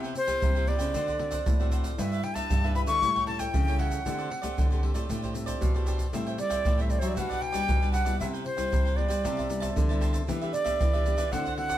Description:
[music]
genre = samba and choro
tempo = 116 BPM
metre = 4/4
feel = straight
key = G major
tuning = A4 = 444 Hz
[part]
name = cavaquinho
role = accompaniment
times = 0.0-11.8 s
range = D4 to A5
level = -38 LUFS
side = right 3 dB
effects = none
[part]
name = nylon-string guitar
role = accompaniment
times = 0.0-11.8 s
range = G2 to B4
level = -37 LUFS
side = left 4 dB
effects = none
[part]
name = nylon-string guitar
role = bass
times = 0.0-11.8 s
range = G2 to G3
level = -34 LUFS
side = equal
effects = none
[part]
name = tube shaker, pandeiro and surdo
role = percussion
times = 0.0-11.8 s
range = none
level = -28 LUFS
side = equal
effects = none
[part]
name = bright reedy concert flute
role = melody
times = 0.2-11.8 s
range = C5 to C#6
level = -29 LUFS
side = equal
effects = none
[sound]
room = moderate stone room reverb, RT60 1.1 s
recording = band playing live in one room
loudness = -25 LUFS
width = side -12 dB against mid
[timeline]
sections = 0.0-11.8 A section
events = none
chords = 0.0 Cmaj7; 0.9 D7; 2.0 G6; 3.0 A7; 4.1 D7sus4; 6.1 Am7; 7.2 Gmaj7/B; 8.2 Cmaj7; 9.2 Am9/C; 10.3 Em7

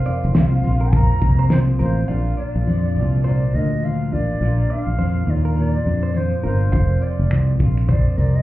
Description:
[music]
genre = acoustic pop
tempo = 104 BPM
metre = 4/4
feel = swing 60% on 16ths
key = Bb major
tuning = A4 = 440 Hz
[part]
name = mellow shakuhachi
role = melody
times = 0.0-8.4 s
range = C5 to Bb5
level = -28 LUFS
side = right 1 dB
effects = none
[part]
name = felt-muted upright piano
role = accompaniment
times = 0.0-8.4 s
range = C4 to F5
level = -34 LUFS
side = left 2 dB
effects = none
[part]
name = fingerpicked steel-string acoustic guitar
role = accompaniment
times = 0.0-8.4 s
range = F2 to F4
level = -24 LUFS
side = equal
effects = double-tracked left and right
[part]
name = direct-recorded clean electric guitar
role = arpeggios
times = 0.1-8.3 s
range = Bb4 to F5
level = -34 LUFS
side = right 5 dB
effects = none
[part]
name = cloth-damped thuddy drum kit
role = drums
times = 0.1-2.0, 6.7-8.3 s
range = finger snaps, kick drum, shaker, snare drum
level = -20 LUFS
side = equal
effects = none
[part]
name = fingered electric bass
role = bass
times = 0.2-8.4 s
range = F1 to F2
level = -18 LUFS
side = equal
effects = none
[sound]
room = light reverb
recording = heard muffled through a wall, club reverb, EQ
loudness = -16 LUFS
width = side -16 dB against mid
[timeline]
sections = 0.0-2.1 A section; 2.1-8.4 B section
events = none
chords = 0.0 Fsus4; 2.1 Bb; 6.7 Fsus4

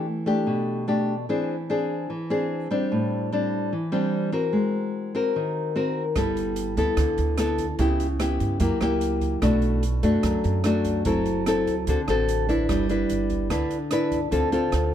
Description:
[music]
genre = bossa nova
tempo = 147 BPM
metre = 4/4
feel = straight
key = E minor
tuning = A4 = 440 Hz
[part]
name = nylon-string guitar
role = accompaniment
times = 0.0-14.9 s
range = F#2 to B4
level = -23 LUFS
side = left 1 dB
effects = none
[part]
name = upright bass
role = bass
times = 6.2-14.9 s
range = F#1 to G2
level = -27 LUFS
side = right 2 dB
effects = none
[part]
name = open jazz drum kit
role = drums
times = 6.2-14.8 s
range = hi-hat, kick drum, rim click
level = -32 LUFS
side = right 2 dB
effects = none
[sound]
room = light reverb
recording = none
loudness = -22 LUFS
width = side -10 dB against mid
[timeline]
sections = 0.0-12.7 A section; 12.7-14.9 B section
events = none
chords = 0.0 Em7; 1.3 E7alt; 2.9 Am7; 4.5 G#9; 6.2 G69; 7.8 C#m7b5; 8.6 F#7b9; 9.4 Bm7; 11.1 F#m7b5; 11.9 D7; 12.7 G6; 14.3 Dm7

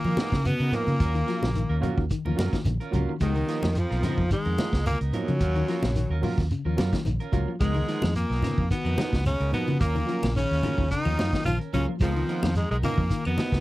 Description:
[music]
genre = afrobeat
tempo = 109 BPM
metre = 4/4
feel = swing 53% on 16ths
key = Db mixolydian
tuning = A4 = 440 Hz
[part]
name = bright alto saxophone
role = melody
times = 0.0-13.6 s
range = Eb3 to F4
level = -30 LUFS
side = equal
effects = none
[part]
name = breathy baritone saxophone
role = second line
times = 0.0-13.6 s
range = Eb2 to F3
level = -38 LUFS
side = left 4 dB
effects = none
[part]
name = raspy tenor saxophone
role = second line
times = 0.0-13.6 s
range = Eb3 to F4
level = -40 LUFS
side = right 3 dB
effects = none
[part]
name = electric guitar at the edge of break-up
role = arpeggios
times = 0.0-13.3 s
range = Db3 to Ab3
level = -33 LUFS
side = left 6 dB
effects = slapback echo
[part]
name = clean electric guitar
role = stabs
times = 0.0-13.6 s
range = F3 to Bb4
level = -36 LUFS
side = right 6 dB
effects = harmonic tremolo
[part]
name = fingered electric bass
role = bass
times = 0.0-13.6 s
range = Bb1 to F3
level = -26 LUFS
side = equal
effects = none
[part]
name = vintage drum kit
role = drums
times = 0.0-13.6 s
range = hi-hat, kick drum, snare drum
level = -29 LUFS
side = equal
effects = none
[part]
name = congas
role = percussion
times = 0.0-13.5 s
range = none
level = -31 LUFS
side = left 1 dB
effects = none
[part]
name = overdriven reed electric piano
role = accompaniment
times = 0.2-13.6 s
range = F3 to Bb4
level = -34 LUFS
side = right 4 dB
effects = none
[part]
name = shekere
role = percussion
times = 0.2-13.5 s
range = none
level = -29 LUFS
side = right 1 dB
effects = none
[part]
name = claves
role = percussion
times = 7.6-13.4 s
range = none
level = -45 LUFS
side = left 2 dB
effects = none
[sound]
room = little or no reverb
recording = dry, close 1970s-style studio recording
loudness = -23 LUFS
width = side -17 dB against mid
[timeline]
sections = 0.0-13.6 A section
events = none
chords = 0.0 Db13; 1.0 Ebm9; 3.2 Db13; 5.4 Ebm9; 7.6 Db13; 9.8 Ebm9; 12.0 Db13

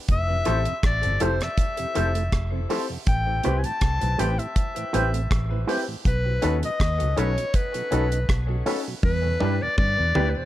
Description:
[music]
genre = lovers rock reggae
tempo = 80 BPM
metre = 4/4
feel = swing 54% on 16ths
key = unclear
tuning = A4 = 439 Hz
[part]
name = bright clarinet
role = melody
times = 0.1-10.5 s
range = B4 to A5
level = -27 LUFS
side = left 2 dB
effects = tape echo
[part]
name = vintage muted fingered electric bass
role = bass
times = 0.1-10.3 s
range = F1 to G2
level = -25 LUFS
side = equal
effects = none
[part]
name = deep reggae drum kit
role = drums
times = 0.1-10.3 s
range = hi-hat, kick drum, rim click, toms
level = -25 LUFS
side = equal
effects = none
[part]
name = mellow tonewheel organ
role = accompaniment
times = 0.3-10.4 s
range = E2 to E4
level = -34 LUFS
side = right 5 dB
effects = slow rotary speaker
[part]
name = clear concert grand piano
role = accompaniment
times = 0.5-10.3 s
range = C4 to B4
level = -32 LUFS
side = left 5 dB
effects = tape echo
[part]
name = electric guitar with an envelope filter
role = stabs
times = 0.5-10.3 s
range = D4 to C5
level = -29 LUFS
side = right 2 dB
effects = wide subtle chorus
[sound]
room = light reverb, small room ambience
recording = none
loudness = -21 LUFS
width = side -14 dB against mid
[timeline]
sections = 0.0-10.5 A section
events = drum fill 9.0-10.5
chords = 0.1 Fmaj7; 3.1 Am7; 6.1 B7; 9.0 Em7

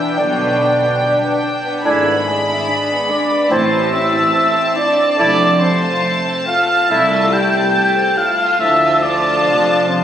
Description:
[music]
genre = classical, slow romantic movement for symphony orchestra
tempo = 71 BPM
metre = 4/4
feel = rubato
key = unclear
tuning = A4 = 441 Hz
[part]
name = warm studio violin section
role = melody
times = 0.0-10.0 s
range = G5 to B5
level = -22 LUFS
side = left 2 dB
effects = none
[part]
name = clear oboe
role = second line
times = 0.0-10.0 s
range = G5 to A5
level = -24 LUFS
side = equal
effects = none
[part]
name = mellow clarinet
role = second line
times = 0.0-10.0 s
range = D4 to E4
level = -26 LUFS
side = right 1 dB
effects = none
[part]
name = mellow silver concert flute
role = second line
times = 0.0-10.0 s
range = D5 to G6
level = -20 LUFS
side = equal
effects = none
[part]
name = warm studio violin section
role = second line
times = 0.0-10.0 s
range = G3 to F4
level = -26 LUFS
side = left 2 dB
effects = none
[part]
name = rich studio viola section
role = accompaniment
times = 0.0-10.0 s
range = A3 to D4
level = -26 LUFS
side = right 1 dB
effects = none
[part]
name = warm bassoon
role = accompaniment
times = 0.0-10.0 s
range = F3 to D4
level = -20 LUFS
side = right 1 dB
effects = none
[part]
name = mellow French horn section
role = sustained chords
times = 0.0-10.0 s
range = D3 to G4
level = -24 LUFS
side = left 3 dB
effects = none
[part]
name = dark trumpet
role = stabs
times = 0.0-10.0 s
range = D4 to G5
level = -18 LUFS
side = right 1 dB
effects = none
[part]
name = rich studio double bass section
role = bass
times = 0.2-10.0 s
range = F1 to D2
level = -26 LUFS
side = right 1 dB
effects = none
[part]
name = rich symphonic cello section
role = bass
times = 0.2-10.0 s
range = C2 to B2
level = -24 LUFS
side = right 2 dB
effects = none
[sound]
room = wet scoring stage reverb, RT60 1.6 s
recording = recorded on a phone in the room, studio ambience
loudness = -12 LUFS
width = side -10 dB against mid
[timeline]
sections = 0.0-10.0 A section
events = none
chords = 0.0 G/B; 1.9 E7/G#; 3.5 Am; 5.2 Fmaj7; 8.6 Dm

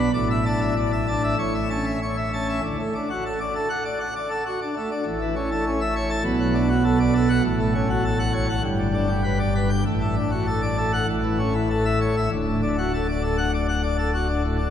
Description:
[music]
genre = classical, organ toccata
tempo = 99 BPM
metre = 4/4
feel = straight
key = D major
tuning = A4 = 440 Hz
[part]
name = pipe organ, plenum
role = solo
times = 0.0-14.7 s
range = D1 to B5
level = -21 LUFS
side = equal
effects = none
[sound]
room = wet cathedral reverb, RT60 6.0 s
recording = heard from further back in the room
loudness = -21 LUFS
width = side -9 dB against mid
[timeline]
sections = 0.0-2.6 A section; 2.6-14.7 B section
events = none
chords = 0.1 Asus4; 1.4 A; 2.6 D; 5.1 A; 6.3 Bm7; 7.4 F#m/A; 8.6 G; 9.9 D/A; 11.1 A; 12.3 D

